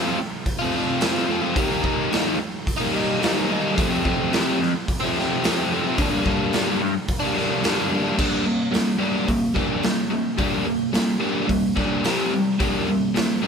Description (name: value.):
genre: garage rock duo or trio.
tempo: 109 BPM.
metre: 4/4.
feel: straight.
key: G minor.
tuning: A4 = 438 Hz.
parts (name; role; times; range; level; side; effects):
biting overdriven guitar; riff; 0.0-13.5 s; F2 to F4; -21 LUFS; left 1 dB; none.
raw garage drum kit; drums; 0.5-13.3 s; crash cymbal, hi-hat, kick drum, snare drum; -25 LUFS; right 1 dB; none.
room: moderate stone room reverb, RT60 1.4 s.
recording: band playing live in one room.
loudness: -20 LUFS.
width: side -6 dB against mid.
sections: 0.0-8.2 A section; 8.2-13.5 B section.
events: none.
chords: 0.0 F; 1.6 Eb; 3.8 F; 6.0 Gm; 12.1 C5; 12.6 Gm.